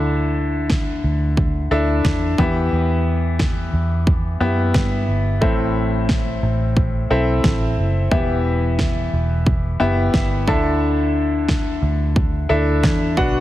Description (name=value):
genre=piano-driven pop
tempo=89 BPM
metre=4/4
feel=straight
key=unclear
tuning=A4 = 441 Hz
part: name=bright concert grand piano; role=accompaniment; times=0.0-13.4 s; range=A2 to A5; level=-20 LUFS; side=left 2 dB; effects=none
part: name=vintage muted fingered electric bass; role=bass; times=0.0-13.4 s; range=E1 to G2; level=-21 LUFS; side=equal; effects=none
part: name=pop drum kit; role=drums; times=0.7-13.3 s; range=kick drum, snare drum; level=-20 LUFS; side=equal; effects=none
room=light reverb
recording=heavily compressed radio sound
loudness=-16 LUFS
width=side -14 dB against mid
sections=0.0-13.4 A section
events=grand piano fill 9.8-10.8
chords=0.0 Dsus2; 2.4 Em; 5.4 Am; 8.1 Em; 10.5 Dsus2